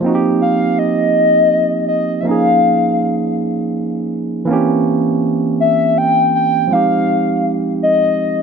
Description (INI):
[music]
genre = R&B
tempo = 54 BPM (dotted quarters)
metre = 6/8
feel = straight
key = Eb mixolydian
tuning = A4 = 440 Hz
[part]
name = barky tine electric piano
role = accompaniment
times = 0.0-8.4 s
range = E3 to Ab4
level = -16 LUFS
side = right 3 dB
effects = overdrive
[part]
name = hollow clarinet-like synth lead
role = melody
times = 0.4-8.4 s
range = Eb5 to G5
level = -15 LUFS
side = left 2 dB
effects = chorus, phaser, ping-pong delay
[sound]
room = light reverb, digital ambience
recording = none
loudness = -13 LUFS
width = side -6 dB against mid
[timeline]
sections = 0.0-8.4 A section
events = none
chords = 0.0 Eb69; 2.3 Db69; 4.5 C7b9; 6.7 Fm9